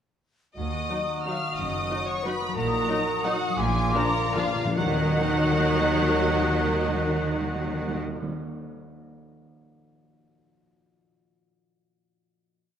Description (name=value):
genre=classical, orchestral ballroom waltz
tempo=139-195 BPM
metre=3/4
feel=rubato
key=Eb minor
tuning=A4 = 436 Hz
part: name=rich symphonic violin section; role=melody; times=0.6-8.0 s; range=F5 to F6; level=-32 LUFS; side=left 2 dB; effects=none
part: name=dark cor anglais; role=second line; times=0.6-8.0 s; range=F4 to Gb4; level=-34 LUFS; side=right 3 dB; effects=none
part: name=large flute ensemble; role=second line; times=0.6-8.0 s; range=D6 to Gb6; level=-33 LUFS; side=left 2 dB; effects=none
part: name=rich chamber violin section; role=second line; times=0.6-8.0 s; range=F4 to F5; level=-32 LUFS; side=left 1 dB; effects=none
part: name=concert harp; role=arpeggios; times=0.6-8.7 s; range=Gb2 to Bb5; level=-34 LUFS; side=left 8 dB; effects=none
part: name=rich symphonic cello section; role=bass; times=0.6-8.0 s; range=Eb2 to Eb3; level=-32 LUFS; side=right 3 dB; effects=none
part: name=warm studio double bass section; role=bass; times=0.6-8.0 s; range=Gb1 to Eb2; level=-32 LUFS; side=right 2 dB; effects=none
part: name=rich symphonic viola section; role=accompaniment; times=0.9-8.0 s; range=F3 to Eb4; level=-32 LUFS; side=right 1 dB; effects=none
part: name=mellow French horn section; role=sustained chords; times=0.9-8.0 s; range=Eb3 to Eb4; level=-32 LUFS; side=left 2 dB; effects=none
part: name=timpani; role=percussion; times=3.6-8.4 s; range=Bb2 to Eb3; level=-31 LUFS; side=equal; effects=none
room=moderate concert hall reverb, RT60 2.2 s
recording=none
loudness=-23 LUFS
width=side -9 dB against mid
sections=0.6-4.8 A section; 4.8-7.2 final chord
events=slowing down 2.1-4.8; timpani fill 3.6-4.8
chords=0.6 Ebm; 1.6 Ebm/Gb; 2.6 Ebm/Bb; 3.6 Bb7; 4.8 Ebm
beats=| 0.57 0.90 1.25 | 1.57 1.91 2.25 | 2.57 2.90 3.25 | 3.60 3.96 4.36 | 4.77 5.18 5.60 | 6.00 6.41 6.83